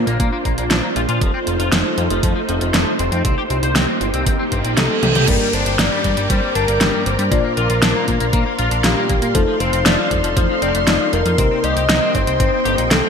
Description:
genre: synthwave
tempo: 118 BPM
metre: 4/4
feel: straight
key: G minor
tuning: A4 = 440 Hz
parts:
  - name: string machine, full ensemble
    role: sustained chords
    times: 0.0-13.1 s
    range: A3 to D6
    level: -22 LUFS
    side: equal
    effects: ensemble chorus, vintage 12-bit sampler grit, sidechain pumping
  - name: fat analog bass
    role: bass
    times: 0.0-13.0 s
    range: F1 to Bb2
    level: -21 LUFS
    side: equal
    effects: tube saturation, sidechain pumping
  - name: clean electric guitar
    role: riff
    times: 0.1-13.1 s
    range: F3 to C5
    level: -25 LUFS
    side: left 5 dB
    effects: ensemble chorus, ping-pong delay
  - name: pop drum kit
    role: drums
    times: 0.1-13.0 s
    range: crash cymbal, hi-hat, snare drum, toms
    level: -20 LUFS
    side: equal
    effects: overdrive, gated reverb
  - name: electronic kick drum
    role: drums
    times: 0.2-12.5 s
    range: none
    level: -20 LUFS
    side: equal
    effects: overdrive
  - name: reverse cymbal and downlifter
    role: sound effects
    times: 4.5-9.3 s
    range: none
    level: -25 LUFS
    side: right 3 dB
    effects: none
  - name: soft octave-layered synth lead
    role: melody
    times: 4.8-13.1 s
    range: G4 to Eb5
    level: -21 LUFS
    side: left 2 dB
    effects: chorus, vintage 12-bit sampler grit, digital delay
  - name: mellow FM electric piano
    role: stabs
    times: 5.3-12.9 s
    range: G2 to G5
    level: -25 LUFS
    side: left 5 dB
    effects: chorus, ping-pong delay
room: moderate plate reverb, RT60 2.0 s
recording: bright 1980s-style digital production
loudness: -14 LUFS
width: side -6 dB against mid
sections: 0.0-5.3 A section; 5.3-13.1 B section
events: reverse cymbal 4.5-5.3; drum fill 5.0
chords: 0.0 Bbadd9; 1.2 F7; 3.2 Cm7; 5.3 Gm; 7.3 Bbadd9; 9.3 F7; 11.4 Cm7

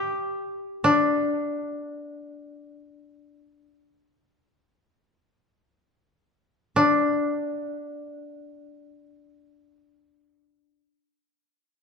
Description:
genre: japanese traditional, Japanese chamber music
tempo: free time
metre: none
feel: none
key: unclear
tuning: A4 = 439 Hz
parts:
  - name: koto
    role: solo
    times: 0.0-10.8 s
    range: D4 to D5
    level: -23 LUFS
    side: left 2 dB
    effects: none
room: moderate recital hall reverb, RT60 1.5 s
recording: minimal, uncompressed stereo recording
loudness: -22 LUFS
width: side -5 dB against mid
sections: 0.0-6.8 A section; 6.8-11.8 B section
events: slowing down 1.0-6.8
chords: none

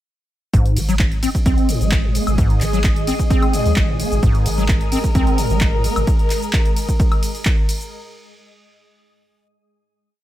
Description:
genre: acid house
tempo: 130 BPM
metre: 4/4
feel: straight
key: Ab major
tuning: A4 = 440 Hz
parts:
  - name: acid bass, square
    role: riff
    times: 0.5-6.1 s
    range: Ab2 to C4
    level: -22 LUFS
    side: equal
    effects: overdrive, ensemble chorus, ping-pong delay
  - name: warm sub bass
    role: bass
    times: 0.5-6.0 s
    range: Ab1 to Eb2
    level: -22 LUFS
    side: equal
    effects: sidechain pumping
  - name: electronic kick drum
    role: drums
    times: 0.5-7.6 s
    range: none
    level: -17 LUFS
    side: equal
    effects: overdrive
  - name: punchy analog drum machine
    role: drums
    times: 0.5-7.9 s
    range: cabasa, handclaps, hi-hat, ride cymbal, woodblock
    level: -26 LUFS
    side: equal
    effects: overdrive
  - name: granular cloud pad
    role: texture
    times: 1.6-6.1 s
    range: Ab3 to Eb6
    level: -26 LUFS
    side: equal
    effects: built-in reverb, sidechain pumping
  - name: muted chamber string section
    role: sustained chords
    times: 4.2-7.9 s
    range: Bb4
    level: -28 LUFS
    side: left 2 dB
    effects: sidechain pumping
room: little or no reverb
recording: none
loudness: -15 LUFS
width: side -14 dB against mid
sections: 0.5-7.9 drop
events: drop 0.5-7.9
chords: 0.5 Ab5

